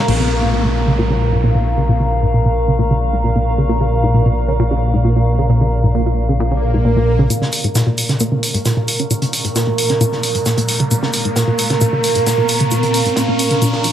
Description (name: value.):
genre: driving peak-time techno.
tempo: 133 BPM.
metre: 4/4.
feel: straight.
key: Bb minor.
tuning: A4 = 440 Hz.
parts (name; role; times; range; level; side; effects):
swarming drone; drone; 0.0-13.9 s; Bb2; -22 LUFS; equal; built-in reverb.
warbly tape-like pad; texture; 0.0-13.9 s; Bb4 to Db6; -21 LUFS; right 2 dB; chorus, built-in reverb.
tight sequenced synth; riff; 0.1-13.9 s; Ab2 to F3; -18 LUFS; equal; chorus, tube saturation, digital delay.
gritty driven synth bass; bass; 0.1-7.3 s; Bb1; -18 LUFS; equal; none.
punchy analog drum machine; drums; 0.1-0.2, 7.3-13.9 s; crash cymbal, hi-hat; -21 LUFS; equal; high-pass filter on snare, high-pass filter on hats, high-pass filter on cymbals, high-pass filter on toms.
downlifter, swell and riser; sound effects; 0.1-3.7, 6.6-13.9 s; none; -24 LUFS; equal; none.
vintage drum kit; drums; 7.3-13.9 s; hi-hat, shaker, snare drum; -25 LUFS; equal; high-pass filter on hats, high-pass filter on snare, high-pass filter on perc, high-pass filter on room.
room: wet lush hall reverb, RT60 1.9 s.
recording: bright 1980s-style digital production, high-pass filter.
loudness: -13 LUFS.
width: side -10 dB against mid.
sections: 0.1-7.3 A section; 7.3-13.9 B section.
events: band accent 0.0; filter sweep on synth arpeggio sound 0.1-7.3; swell 6.6-7.3; build-up 7.3-13.9; riser 7.3-13.9.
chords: 0.1 Bbm.